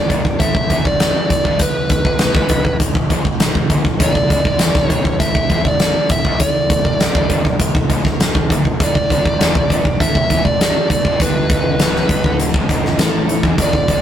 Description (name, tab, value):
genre	hard rock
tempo	100 BPM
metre	4/4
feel	straight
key	B minor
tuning	A4 = 439 Hz
part	smooth overdriven lead guitar	melody	0.0-14.0 s	B4 to E5	-18 LUFS	right 1 dB	none
part	overdriven electric guitar	riff	0.0-14.0 s	B1 to A2	-23 LUFS	equal	none
part	fuzz fingered electric bass	bass	0.0-14.0 s	B0 to A1	-23 LUFS	equal	overdrive
part	huge arena drum kit	drums	0.1-14.0 s	hi-hat, kick drum, snare drum	-15 LUFS	equal	none
room	light reverb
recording	rough rehearsal-room recording, tube saturation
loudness	-13 LUFS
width	side -10 dB against mid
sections	0.0-14.0 A section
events	none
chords	0.0 Bm